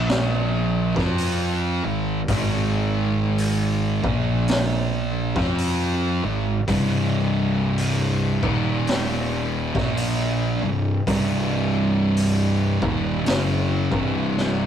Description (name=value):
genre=stoner and doom metal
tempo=55 BPM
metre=4/4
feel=swing 59% on 8ths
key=C minor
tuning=A4 = 443 Hz
part: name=thick fuzz guitar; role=riff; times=0.0-14.7 s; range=C2 to F4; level=-25 LUFS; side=left 5 dB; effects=distortion
part: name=thick fuzz guitar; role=riff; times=0.0-14.7 s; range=C2 to F4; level=-24 LUFS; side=right 4 dB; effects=distortion
part: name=fuzz fingered electric bass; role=bass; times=0.0-14.7 s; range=C1 to F2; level=-26 LUFS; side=right 1 dB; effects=overdrive
part: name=raw garage drum kit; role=drums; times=0.1-14.7 s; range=hi-hat, kick drum, snare drum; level=-27 LUFS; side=equal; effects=none
room=moderate studio ambience, RT60 0.5 s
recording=rough rehearsal-room recording, tube saturation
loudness=-20 LUFS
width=side -9 dB against mid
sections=0.0-14.7 A section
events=drum fill 14.4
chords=0.0 Bb5; 0.9 Ab5; 3.9 Bb5; 5.3 Ab5; 6.7 C5; 8.3 Eb5; 9.7 Cm